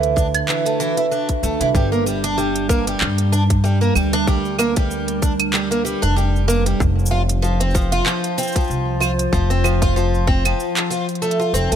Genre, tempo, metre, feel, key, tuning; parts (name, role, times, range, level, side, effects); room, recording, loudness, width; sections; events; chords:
folktronica; 95 BPM; 4/4; swing 56% on 16ths; G dorian; A4 = 442 Hz
warbly tape-like pad; sustained chords; 0.0-11.8 s; D3 to E5; -24 LUFS; right 1 dB; chorus, built-in reverb
picked twelve-string acoustic guitar; arpeggios; 0.0-11.8 s; E3 to F4; -21 LUFS; right 1 dB; tape echo
upright bass; bass; 0.0-11.8 s; F1 to G2; -20 LUFS; equal
organic electronic drum kit; drums; 0.0-11.8 s; claves, handclaps, hi-hat, shaker; -24 LUFS; right 3 dB; overdrive
electronic kick drum; drums; 0.2-10.4 s; -19 LUFS; equal; overdrive
little or no reverb; -16 LUFS; side -9 dB against mid
0.0-1.7 A section; 1.7-11.8 B section
filter sweep on twelve-string acoustic guitar 0.0-1.7
0.0 Dadd9; 1.7 Gm; 6.8 F5